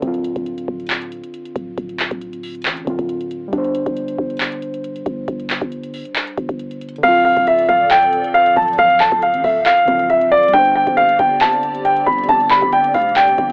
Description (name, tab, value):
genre	hip hop, trap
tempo	137 BPM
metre	4/4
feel	half-time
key	D minor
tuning	A4 = 440 Hz
part	muted felt-like synth keys	accompaniment	0.0-13.5 s	D3 to C5	-28 LUFS	equal	chorus, cassette tape
part	growling 808-style bass	bass	0.0-13.5 s	D1 to A1	-30 LUFS	equal	none
part	booming analog drum machine	drums	0.0-13.5 s	crash cymbal, handclaps, hi-hat, kick drum	-27 LUFS	equal	overdrive
part	dark baby grand piano	melody	7.0-13.5 s	D5 to B5	-14 LUFS	equal	cassette tape
part	hollow soft pad	sustained chords	7.5-13.5 s	D3 to F5	-30 LUFS	equal	ensemble chorus, cassette tape
room	light reverb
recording	home recording on cassette, telephone sound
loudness	-16 LUFS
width	mono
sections	0.0-7.0 A section; 7.0-13.5 B section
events	break 0.0-7.0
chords	0.0 Dm7; 3.5 Gsus4; 7.0 Dm7; 10.5 Gsus4